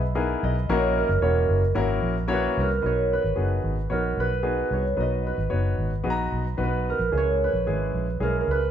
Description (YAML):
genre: uptempo 1960s-style soul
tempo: 112 BPM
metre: 4/4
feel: straight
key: B major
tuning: A4 = 441 Hz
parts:
  - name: concert harp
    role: melody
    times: 0.0-8.7 s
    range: A#4 to E5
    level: -26 LUFS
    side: right 3 dB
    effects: none
  - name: vintage muted fingered electric bass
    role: bass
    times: 0.0-8.7 s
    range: E1 to C#2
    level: -26 LUFS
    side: equal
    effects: none
  - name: warm grand piano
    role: accompaniment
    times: 0.2-8.6 s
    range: G#3 to A#5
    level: -28 LUFS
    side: left 3 dB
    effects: none
room: moderate stone room reverb, RT60 1.4 s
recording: band playing live in one room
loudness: -22 LUFS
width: side -9 dB against mid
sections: 0.0-2.8 A section; 2.8-8.7 B section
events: none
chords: 0.0 Emaj7; 0.7 F#7; 2.8 B; 7.1 C#m